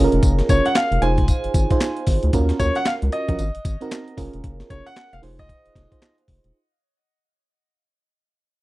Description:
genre	R&B, new jack swing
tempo	114 BPM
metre	4/4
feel	swing 62% on 16ths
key	unclear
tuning	A4 = 439 Hz
part	mellow FM electric piano	accompaniment	0.0-6.6 s	C4 to C5	-24 LUFS	right 4 dB	chorus
part	round analog bass	bass	0.0-6.5 s	Fb1 to Eb2	-21 LUFS	equal	none
part	breakbeat sampler-style drum kit	drums	0.1-6.5 s	handclaps, hi-hat, kick drum, snare drum, tambourine	-21 LUFS	equal	none
part	clear concert grand piano	melody	0.5-6.1 s	Db5 to Ab5	-24 LUFS	equal	tape echo
room	little or no reverb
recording	dry, close 1970s-style studio recording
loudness	-17 LUFS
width	side -18 dB against mid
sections	0.0-6.5 A section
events	fade-out 0.0-6.5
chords	0.0 Gbmaj7; 1.0 Fm7; 2.3 Ebm7; 3.4 Ab7; 4.2 Gbmaj7; 5.2 Fm7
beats	| 0.23 0.75 1.28 1.81 | 2.33 2.86 3.38 3.91 | 4.44 4.96 5.49 6.02

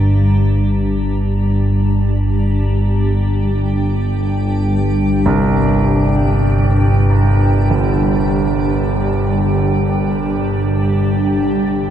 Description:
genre	dark ambient drone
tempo	free time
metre	none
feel	none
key	G minor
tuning	A4 = 440 Hz
part	granular cloud pad	sustained chords	0.0-11.9 s	G3 to Bb5	-20 LUFS	equal	built-in reverb
part	analog drone	drone	0.0-11.9 s	G1 to G2	-15 LUFS	equal	chorus
part	dark baby grand piano	arpeggios	5.3-11.9 s	G1 to C2	-18 LUFS	right 2 dB	diffuse ambient delay
room	wet cathedral reverb, RT60 5.2 s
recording	in a vast, echoing space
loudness	-13 LUFS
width	side -10 dB against mid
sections	0.0-11.9 A section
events	none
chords	0.0 G5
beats	free time

